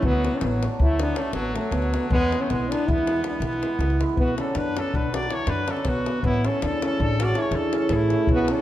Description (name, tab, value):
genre	balkan folk, Balkan wedding band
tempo	320 BPM (eighths)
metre	11/8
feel	straight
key	unclear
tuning	A4 = 440 Hz
part	mellow French horn	melody	0.0-8.6 s	A3 to F#4	-26 LUFS	left 1 dB	none
part	clear trumpet	second line	0.0-8.6 s	F#3 to D5	-31 LUFS	left 1 dB	none
part	cimbalom	accompaniment	0.0-8.6 s	C#3 to E4	-28 LUFS	right 2 dB	none
part	upright bass	bass	0.0-8.5 s	A1 to F#2	-27 LUFS	equal	none
part	davul	percussion	0.0-8.6 s	none	-28 LUFS	left 2 dB	none
room	moderate concert hall reverb, RT60 1.8 s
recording	none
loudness	-21 LUFS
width	side -13 dB against mid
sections	0.0-4.2 A section; 4.2-8.6 B section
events	none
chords	0.0 D; 2.1 E; 4.2 Bm; 6.2 A